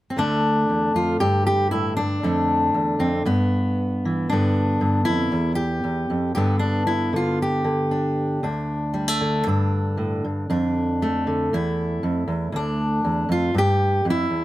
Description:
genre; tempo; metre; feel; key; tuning
folk, solo fingerstyle acoustic guitar; 116 BPM; 4/4; straight; D dorian; A4 = 440 Hz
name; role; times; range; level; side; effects
fingerpicked steel-string acoustic guitar; solo; 0.1-14.4 s; D2 to G4; -20 LUFS; equal; none
room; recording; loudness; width
light reverb; none; -20 LUFS; side -16 dB against mid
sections
0.2-14.4 A section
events
none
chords
0.2 Dm; 1.2 G5; 2.2 Dm/F; 3.3 Em/G; 4.3 G; 5.3 Em; 6.3 G; 8.4 D5; 9.5 G5; 10.5 Dm/F; 11.5 N.C.; 12.5 Dm; 13.6 Em

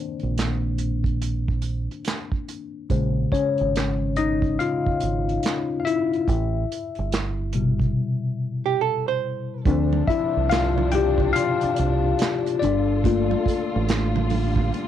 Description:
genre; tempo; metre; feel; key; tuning
R&B, neo-soul; 71 BPM; 4/4; swing 63% on 16ths; unclear; A4 = 440 Hz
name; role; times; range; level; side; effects
tine electric piano; accompaniment; 0.0-14.9 s; B2 to G5; -24 LUFS; left 5 dB; phaser, cassette tape, plate reverb
deep dub fingered electric bass; bass; 0.2-14.7 s; G1 to D2; -24 LUFS; right 2 dB; none
unplugged drum kit; drums; 0.2-14.9 s; handclaps, hi-hat, kick drum, snare drum; -26 LUFS; right 3 dB; none
archtop guitar, miked and amplified; second line; 8.7-9.6 s; G4 to C5; -23 LUFS; right 12 dB; cassette tape
warm symphonic string section; sustained chords; 9.7-14.9 s; C3 to A4; -30 LUFS; right 1 dB; cassette tape, plate reverb
congas; percussion; 9.7-14.9 s; none; -33 LUFS; right 11 dB; none
room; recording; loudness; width
moderate small room ambience, RT60 0.5 s; home recording on cassette; -21 LUFS; side -10 dB against mid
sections
0.0-9.7 A section; 9.7-14.9 B section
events
tine electric piano solo 0.0-9.7, 9.7-14.9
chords
0.0 Cm9; 2.9 Bbm9 (rootless); 6.3 Am9 (rootless); 9.7 Dm9; 12.6 Gm9

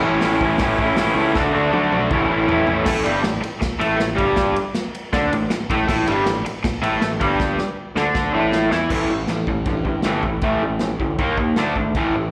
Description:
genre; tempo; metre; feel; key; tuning
garage rock duo or trio; 159 BPM; 4/4; straight; A mixolydian; A4 = 439 Hz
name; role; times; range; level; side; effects
raw garage guitar; riff; 0.0-12.3 s; G2 to F#4; -21 LUFS; equal; overdrive, slapback echo
fuzz picked electric bass; bass; 0.0-12.3 s; G1 to G2; -28 LUFS; equal; overdrive
vintage drum kit; drums; 0.2-12.0 s; crash cymbal, hi-hat, kick drum, ride cymbal, snare drum, toms; -28 LUFS; equal; none
room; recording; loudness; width
light reverb; live gig heard through the venue's PA, club reverb; -20 LUFS; mono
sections
0.0-2.9 A section; 2.9-8.9 B section; 8.9-12.3 C section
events
drum fill 1.3-2.9, 7.4-8.9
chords
0.0 A; 1.3 D; 2.1 A; 2.9 A5; 11.2 D#5; 11.6 D5

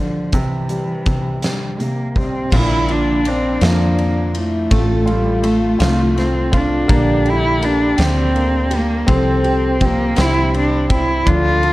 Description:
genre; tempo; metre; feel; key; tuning
six-eight pop ballad; 55 BPM (dotted quarters); 6/8; straight; unclear; A4 = 440 Hz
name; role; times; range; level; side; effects
dark cello; melody; 0.0-11.7 s; E3 to F4; -19 LUFS; equal; ping-pong delay
clear concert grand piano; accompaniment; 0.0-11.7 s; Bb2 to A4; -23 LUFS; equal; none
huge arena drum kit; drums; 0.3-11.7 s; crash cymbal, hi-hat, kick drum, ride cymbal, snare drum; -22 LUFS; equal; none
mellow French horn section; second line; 2.5-11.7 s; D4 to A4; -24 LUFS; left 3 dB; none
picked steel-string acoustic guitar; arpeggios; 2.5-11.7 s; Bb2 to Bb4; -25 LUFS; right 4 dB; none
woody fretless electric bass; bass; 2.5-11.7 s; A1 to F2; -18 LUFS; equal; none
room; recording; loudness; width
small room ambience; worn, warbling old tape, cassette tape, warbly pitch drift; -14 LUFS; side -18 dB against mid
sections
0.0-2.5 A section; 2.5-11.7 B section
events
none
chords
0.3 C; 2.5 Bb; 4.7 F/A; 6.9 Gmadd9/Bb; 9.1 Csus4; 10.2 C

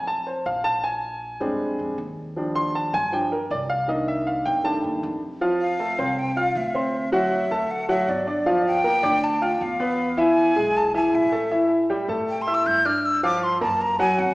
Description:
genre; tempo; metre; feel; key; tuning
Afro-Cuban jazz; 157 BPM; 4/4; straight; Bb major, F major from 5.4 s; A4 = 445 Hz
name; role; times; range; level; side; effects
warm grand piano; accompaniment; 0.0-14.3 s; Eb3 to F6; -22 LUFS; equal; none
upright bass; bass; 0.0-14.3 s; G1 to A2; -35 LUFS; equal; none
breathy jazz flute; melody; 5.6-14.3 s; D5 to G6; -23 LUFS; equal; none
room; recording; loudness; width
wet large studio reverb, RT60 1.4 s; heard from further back in the room, small speaker sound; -20 LUFS; side -20 dB against mid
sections
0.0-5.4 A section; 5.4-14.3 A section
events
grand piano solo 0.0-5.4; flute solo 5.4-14.3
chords
0.0 Bbmaj7sus2; 0.8 Bb13; 2.4 Ebmaj7; 3.9 Cm9; 4.7 F13; 5.4 Fmaj7; 6.9 D7; 8.5 Gm7; 10.0 E; 11.5 A5; 13.0 Gm7; 13.8 Gb

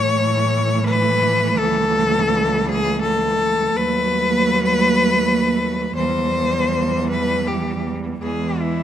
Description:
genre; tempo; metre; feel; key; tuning
classical, lyrical piece for cello ensemble; 81 BPM; 3/4; rubato; E minor from 3.8 s; A4 = 443 Hz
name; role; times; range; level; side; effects
rich cello; melody; 0.0-8.8 s; E4 to C#5; -19 LUFS; left 4 dB; none
rich cello; second line; 0.0-8.8 s; G3 to A3; -25 LUFS; right 10 dB; none
clear cello; accompaniment; 0.0-8.8 s; E3 to F#3; -25 LUFS; right 2 dB; none
warm cello; bass; 0.0-8.8 s; C#2 to A2; -23 LUFS; right 2 dB; none
room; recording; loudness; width
moderate recital hall reverb, RT60 1.5 s; close, detailed microphones; -16 LUFS; side -10 dB against mid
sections
0.0-8.8 A section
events
none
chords
0.0 A; 1.6 A/C#; 3.8 B7/D#; 6.0 Em

